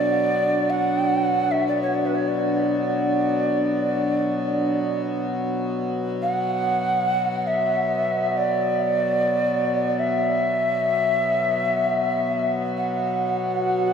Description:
world meditative, free-time meditation music; free time; B minor; A4 = 439 Hz
breathy mellow Native American-style cedar flute; melody; 0.0-13.9 s; B4 to F#5; -22 LUFS; right 1 dB; ping-pong delay
pedal harmonium; drone; 0.0-13.9 s; B2 to F#3; -25 LUFS; left 2 dB
glass harmonica; texture; 0.0-4.9, 13.4-13.9 s; D4 to F#4; -26 LUFS; equal
wet huge ambient reverb, RT60 3.8 s; -20 LUFS; side -7 dB against mid
0.0-13.9 A section
free time

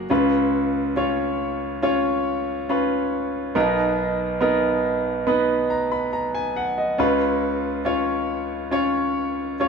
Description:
pop; 70 BPM; 4/4; straight; A4 = 440 Hz
clear grand piano; solo; 0.0-9.7 s; B1 to B5; -20 LUFS; equal
wet studio reverb, RT60 0.6 s; band playing live in one room; -20 LUFS; side -5 dB against mid
0.0-9.7 A section
0.1 C#7; 3.6 Bmaj7; 7.0 C#7
| 0.10 0.96 1.83 2.69 | 3.55 4.41 5.27 6.13 | 6.99 7.85 8.72 9.60

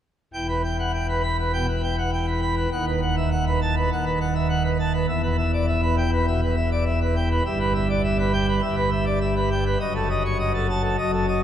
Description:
classical, organ toccata; 102 BPM; 4/4; straight; E minor; A4 = 440 Hz
pipe organ, plenum; solo; 0.3-11.4 s; D#1 to B5; -20 LUFS; equal
wet cathedral reverb, RT60 5.1 s; -21 LUFS; side -10 dB against mid
0.3-11.4 A section
0.3 Em; 2.7 B7/D#; 5.1 Em; 7.5 Em/G; 9.8 D#dim/F#
| 0.34 0.94 1.53 2.12 | 2.72 3.31 3.91 4.50 | 5.08 5.68 6.27 6.86 | 7.45 8.04 8.63 9.22 | 9.80 10.39 10.97

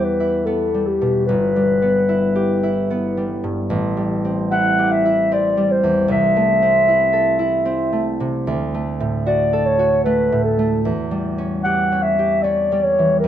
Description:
classical, romantic duo for clarinet and harp; 75 BPM; 3/4; rubato; A4 = 440 Hz
dark clarinet; melody; 0.0-13.3 s; G4 to F#5; -17 LUFS; equal
concert harp; accompaniment; 0.0-13.3 s; G1 to A4; -19 LUFS; equal
light reverb; close, detailed microphones; -16 LUFS; side -10 dB against mid
0.0-13.3 A section
0.0 Em; 1.3 Em/G; 3.7 Am7; 6.1 Am/C; 8.5 D; 10.8 C#dim/E
0.47 | 1.28 2.08 2.89 | 3.70 4.51 5.32 | 6.10 6.89 7.67 | 8.48 9.26 10.05 | 10.84 11.64 12.44 | 13.23

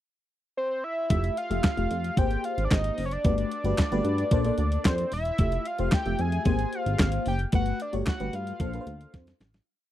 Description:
early-eighties boogie funk; 112 BPM; 4/4; straight; F major; A4 = 440 Hz
fat analog lead; melody; 0.6-9.1 s; C5 to Ab5; -31 LUFS; equal; chorus
FM electric piano with soft pad layer; accompaniment; 1.1-9.3 s; A3 to F5; -32 LUFS; left 3 dB; chorus, phaser
chorused synth bass; bass; 1.1-9.6 s; E1 to G2; -28 LUFS; equal
crisp 8-bit digital drum machine; drums; 1.1-9.7 s; handclaps, hi-hat, kick drum, snare drum; -25 LUFS; equal
little or no reverb; dry, close 1970s-style studio recording; -24 LUFS; side -13 dB against mid
0.0-1.1 pickup bar; 1.1-9.7 verse
fade-out 7.5-9.7; drum fill 9.1-9.7
0.0 N.C.; 1.1 Fmaj9; 2.2 Abmaj9; 3.2 Gmaj9; 4.3 Bbmaj9; 5.4 Fmaj9; 6.5 Abmaj9; 7.5 Gmaj9; 8.6 Bbmaj9
0.03 0.57 | 1.10 1.64 2.17 2.71 | 3.25 3.78 4.32 4.85 | 5.39 5.92 6.46 7.00 | 7.53 8.07 8.60 9.14

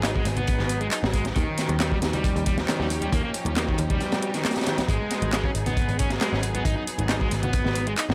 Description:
breakbeat, breaks; 136 BPM; 4/4; straight; G# dorian; A4 = 442 Hz
rich symphonic string section; sustained chords; 0.0-8.1 s; E#3 to G#4; -35 LUFS; equal; sidechain pumping
overdriven semi-hollow guitar; riff; 0.0-8.0 s; D#3 to D#4; -32 LUFS; equal; tube saturation, digital delay
picked electric bass; bass; 0.0-8.1 s; G#1 to D#2; -30 LUFS; equal; tube saturation
crunchy breakbeat drum kit; drums; 0.0-8.1 s; hi-hat, kick drum, snare drum; -28 LUFS; equal
garage drum kit; drums; 0.0-8.1 s; handclaps, hi-hat; -35 LUFS; equal
congas; percussion; 0.4-7.5 s; -38 LUFS; equal
studio reverb; -25 LUFS; mono
0.0-8.1 A section
0.0 G#m7; 1.4 D#9; 4.9 G#m7
0.04 0.48 0.92 | 1.36 1.80 2.24 2.68 | 3.12 3.56 4.00 4.45 | 4.89 5.33 5.77 6.21 | 6.65 7.09 7.54 7.98

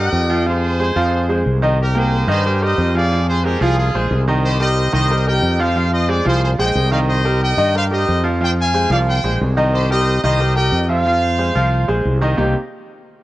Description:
latin, salsa; 181 BPM; 4/4; straight; C minor; A4 = 435 Hz
brilliant trumpet section; melody; 0.0-12.0 s; F4 to Ab5; -21 LUFS; equal
bright baby grand piano; accompaniment; 0.0-12.5 s; C3 to G5; -19 LUFS; right 1 dB
fretless electric bass; bass; 0.0-12.5 s; Bb1 to G2; -17 LUFS; equal
light reverb; worn, warbling old tape, cassette tape, warbly pitch drift; -14 LUFS; side -16 dB against mid
0.0-1.8 A section; 1.8-12.4 A section
0.5 Fm; 1.8 Cm7; 3.1 Fm; 4.4 Cm7; 5.8 Fmadd9; 7.1 Cm7; 8.4 Fmadd9; 9.7 Cm7; 11.1 Fm; 12.4 Cm7
0.13 | 0.46 0.79 1.12 1.46 | 1.79 2.12 2.45 2.78 | 3.11 3.44 3.77 4.11 | 4.44 4.77 5.10 5.43 | 5.76 6.09 6.42 6.75 | 7.09 7.42 7.75 8.08 | 8.41 8.74 9.07 9.40 | 9.74 10.07 10.40 10.73 | 11.06 11.39 11.72 12.05 | 12.39

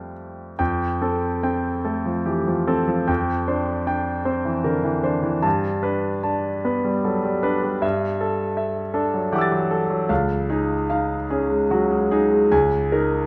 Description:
classical, impressionist solo piano; 40-55 BPM (dotted quarters); 6/8; rubato; F major, Db major from 10.1 s; A4 = 440 Hz
clear concert grand piano; solo; 0.0-13.3 s; Db2 to A6; -22 LUFS; equal
moderate recital hall reverb, RT60 1.7 s; nothing above 11.0 kHz; -22 LUFS; mono
0.6-13.3 A section
0.0 Fadd9; 3.1 Dm11/F; 5.4 Gadd9; 7.8 Em11/G; 10.1 Dbadd9; 12.5 Bbm11/Db
| 0.59 1.86 | 3.09 4.26 | 5.45 6.65 | 7.83 8.95 | 10.10 11.30 | 12.52

